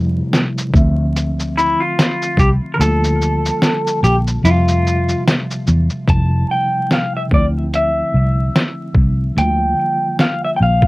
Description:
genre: lo-fi hip hop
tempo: 73 BPM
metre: 4/4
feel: swing 56% on 16ths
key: F major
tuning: A4 = 440 Hz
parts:
  - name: mellow tine electric piano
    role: accompaniment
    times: 0.0-10.9 s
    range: C3 to E5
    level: -22 LUFS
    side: equal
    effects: medium stereo tremolo, cassette tape, low-pass filter
  - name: vintage muted fingered electric bass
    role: bass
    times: 0.0-10.9 s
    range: F1 to F2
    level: -16 LUFS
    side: equal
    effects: none
  - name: lo-fi sampler-style drum kit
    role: drums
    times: 0.3-10.9 s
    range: hi-hat, kick drum, shaker, snare drum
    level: -15 LUFS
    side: equal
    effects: overdrive, vintage 12-bit sampler grit, cassette tape
  - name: electric guitar through a small old amp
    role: melody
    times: 1.6-10.9 s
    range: E4 to A5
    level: -18 LUFS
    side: left 1 dB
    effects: phaser, low-pass filter, cassette tape
room: moderate booth ambience, RT60 0.2 s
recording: home recording on cassette, vinyl crackle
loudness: -14 LUFS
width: side -20 dB against mid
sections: 0.0-6.1 A section; 6.1-10.9 B section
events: kick muted 2.8-6.1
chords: 0.0 Fmaj9; 0.7 Dm9; 2.8 Bb6/D; 4.4 Fmaj9; 7.3 Dm9; 9.4 Bb6/D

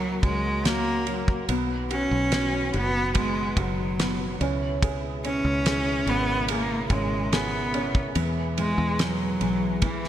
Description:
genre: pop ballad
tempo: 72 BPM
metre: 4/4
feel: straight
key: B major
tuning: A4 = 441 Hz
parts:
  - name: warm cello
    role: melody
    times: 0.0-10.1 s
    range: E3 to C#4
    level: -26 LUFS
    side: equal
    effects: ping-pong delay
  - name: dark upright piano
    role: accompaniment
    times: 0.0-10.1 s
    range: E3 to G#4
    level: -31 LUFS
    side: equal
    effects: lush chorus
  - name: percussive tonewheel organ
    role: sustained chords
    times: 0.0-10.1 s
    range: B2 to B4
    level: -34 LUFS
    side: right 1 dB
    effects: chorus vibrato, fast rotary speaker
  - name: fingered electric bass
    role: bass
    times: 0.0-10.1 s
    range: F#1 to E2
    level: -30 LUFS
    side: equal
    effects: none
  - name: damped 70s drum kit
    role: drums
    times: 0.2-10.1 s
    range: kick drum, ride cymbal, snare drum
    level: -29 LUFS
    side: equal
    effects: gated reverb
room: moderate lush hall reverb, RT60 2.6 s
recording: bright 1980s-style digital production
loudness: -23 LUFS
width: side -11 dB against mid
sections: 0.0-10.1 A section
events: none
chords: 0.0 F#; 1.5 B; 4.4 C#m7; 8.2 E

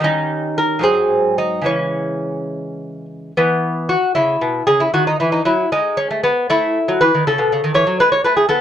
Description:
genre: classical, baroque-style dance for lute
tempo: 69-82 BPM (dotted quarters)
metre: 6/8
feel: rubato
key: C# minor, E major from 3.4 s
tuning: A4 = 439 Hz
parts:
  - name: lute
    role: solo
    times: 0.0-8.6 s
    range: G#2 to C#5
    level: -15 LUFS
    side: equal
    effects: none
room: moderate studio reverb, RT60 0.6 s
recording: dark, warm production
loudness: -14 LUFS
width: side -10 dB against mid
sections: 0.0-3.4 A section; 3.4-8.6 A section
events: none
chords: 0.1 D#7; 0.9 G#7; 1.7 C#m; 3.4 E5; 5.0 D#m; 5.7 N.C.; 6.5 A; 8.0 Amaj9/G#

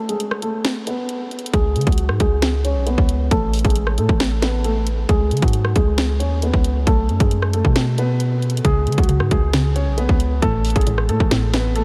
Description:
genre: hip hop, trap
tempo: 135 BPM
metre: 4/4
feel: half-time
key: unclear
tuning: A4 = 442 Hz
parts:
  - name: felt-muted upright piano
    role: melody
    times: 0.0-11.8 s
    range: F#3 to C#5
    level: -26 LUFS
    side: equal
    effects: low-pass filter, tape echo
  - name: trap drum kit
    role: drums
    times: 0.1-11.8 s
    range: hi-hat, kick drum, rim click, snare drum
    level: -23 LUFS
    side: equal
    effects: none
  - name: long sustained 808-style bass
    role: bass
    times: 1.5-11.8 s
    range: A1 to C#3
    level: -22 LUFS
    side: equal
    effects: none
  - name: mallet-like synth pluck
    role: accompaniment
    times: 8.6-11.8 s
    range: A2 to C#3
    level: -26 LUFS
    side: equal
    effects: chorus, phaser, low-pass filter
room: light reverb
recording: none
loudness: -19 LUFS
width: mono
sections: 0.0-11.8 A section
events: break 0.0-1.5; filter sweep 0.0-8.6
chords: 0.0 G#m; 1.5 C#5; 3.3 Asus2; 5.1 C#sus2; 6.9 B5; 8.6 C#5; 10.4 Asus2

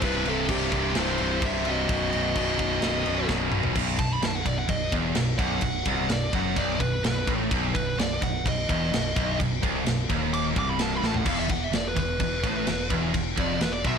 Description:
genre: heavy metal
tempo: 128 BPM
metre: 4/4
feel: straight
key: B phrygian dominant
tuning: A4 = 437 Hz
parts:
  - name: high-gain lead guitar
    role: melody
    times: 0.0-14.0 s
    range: G4 to D6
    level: -31 LUFS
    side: equal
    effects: distortion
  - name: bluesy overdriven lead guitar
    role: second line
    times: 0.0-3.3 s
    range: C4 to G4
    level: -35 LUFS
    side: right 2 dB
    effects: distortion
  - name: distorted electric guitar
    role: riff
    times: 0.0-14.0 s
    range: B1 to C3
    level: -30 LUFS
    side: left 12 dB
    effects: overdrive
  - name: scooped high-gain guitar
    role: riff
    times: 0.0-14.0 s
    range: B1 to C3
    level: -29 LUFS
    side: right 13 dB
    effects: distortion
  - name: growling picked electric bass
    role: bass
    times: 0.0-14.0 s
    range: B0 to B1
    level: -33 LUFS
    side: equal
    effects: overdrive
  - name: tight metal drum kit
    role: drums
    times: 0.0-14.0 s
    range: crash cymbal, kick drum, ride cymbal, snare drum, toms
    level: -28 LUFS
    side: equal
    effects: soft clipping on kick
room: light reverb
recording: blown-out, overdriven recording, overdrive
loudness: -23 LUFS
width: side -6 dB against mid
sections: 0.0-3.8 A section; 3.8-14.0 B section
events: half time 0.0-3.8; drum fill 3.3-3.8, 11.0; lead electric guitar solo 3.8-14.0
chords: 0.0 C; 1.9 B; 11.3 E5

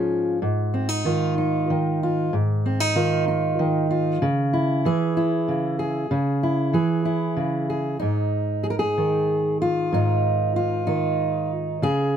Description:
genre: folk, solo fingerstyle acoustic guitar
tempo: 63 BPM (dotted quarters)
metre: 6/8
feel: straight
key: unclear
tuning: A4 = 442 Hz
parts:
  - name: fingerpicked steel-string acoustic guitar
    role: solo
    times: 0.0-12.2 s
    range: Ab2 to Bb4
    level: -20 LUFS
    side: right 1 dB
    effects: none
room: light reverb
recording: none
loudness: -20 LUFS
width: side -8 dB against mid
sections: 0.4-8.0 A section; 8.0-12.2 B section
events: none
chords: 0.4 Ab5; 4.2 Dbm; 8.0 Ab5

